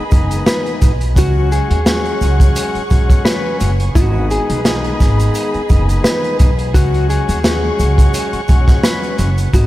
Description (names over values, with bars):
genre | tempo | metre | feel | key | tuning
hip hop, boom-bap hip-hop | 86 BPM | 4/4 | swing 54% on 16ths | unclear | A4 = 440 Hz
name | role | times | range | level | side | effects
mellow electric guitar | melody | 0.0-9.7 s | F#4 to B4 | -21 LUFS | left 1 dB | analog chorus, high-pass filter, low-pass filter, tape echo
bright tonewheel organ | accompaniment | 0.0-9.7 s | D#3 to F#4 | -23 LUFS | left 3 dB | cassette tape, high-pass filter, low-pass filter
warm symphonic string section | sustained chords | 0.0-9.7 s | G#4 to C#6 | -28 LUFS | equal | high-pass filter, low-pass filter
upright bass | bass | 0.1-9.7 s | F#1 to D#2 | -16 LUFS | equal | none
crunchy breakbeat drum kit | drums | 0.1-9.7 s | hi-hat, kick drum, snare drum | -14 LUFS | equal | none
egg shaker | percussion | 0.1-9.7 s | none | -35 LUFS | right 5 dB | none
room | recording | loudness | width
light reverb, studio reverb | none | -12 LUFS | side -16 dB against mid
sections
0.0-9.7 A section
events
none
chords
0.0 G#m; 1.2 C#sus4; 4.0 G#m; 6.7 C#sus4